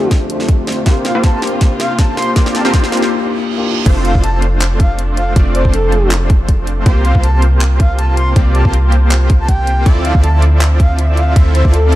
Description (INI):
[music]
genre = future bass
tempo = 160 BPM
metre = 4/4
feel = swing 54% on 16ths, half-time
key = F major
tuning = A4 = 441 Hz
[part]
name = breathy flute-like synth lead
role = melody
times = 0.0-12.0 s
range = A4 to C6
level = -21 LUFS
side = equal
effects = chorus, sidechain pumping, dub echo
[part]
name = tine electric piano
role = accompaniment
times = 0.0-3.9 s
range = A3 to G4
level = -22 LUFS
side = left 4 dB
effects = sidechain pumping, dub echo
[part]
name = warm chamber string section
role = sustained chords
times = 0.0-12.0 s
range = F2 to E5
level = -27 LUFS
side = right 1 dB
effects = sidechain pumping
[part]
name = supersaw stab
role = riff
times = 0.0-12.0 s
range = A3 to E5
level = -19 LUFS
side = equal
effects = sidechain pumping, low-pass filter
[part]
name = riser and reverse cymbal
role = sound effects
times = 1.7-3.9 s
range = none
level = -27 LUFS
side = right 2 dB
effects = none
[part]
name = electronic kick drum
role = drums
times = 0.1-11.7 s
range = none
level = -11 LUFS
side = equal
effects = studio reverb
[part]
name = pop drum kit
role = drums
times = 0.1-12.0 s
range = crash cymbal, handclaps, hi-hat, snare drum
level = -22 LUFS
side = equal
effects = high-pass filter on snare, studio reverb, high-pass filter on hats, high-pass filter on cymbals
[part]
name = warm 808-style bass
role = bass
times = 3.9-12.0 s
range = F1 to D2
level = -12 LUFS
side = equal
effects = sidechain pumping
[sound]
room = light reverb, digital ambience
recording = dark, warm production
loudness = -10 LUFS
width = side -15 dB against mid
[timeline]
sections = 0.0-3.9 A section; 3.9-12.0 B section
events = build-up 0.0-3.9; drum fill 0.0-3.1; filter sweep on supersaw synth 0.0-3.9; break 3.1-3.9; reverse cymbal 3.1-3.9; drop 3.9-12.0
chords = 0.0 F6; 0.9 C7sus4; 3.9 F6; 6.9 C7sus4; 9.9 Dm9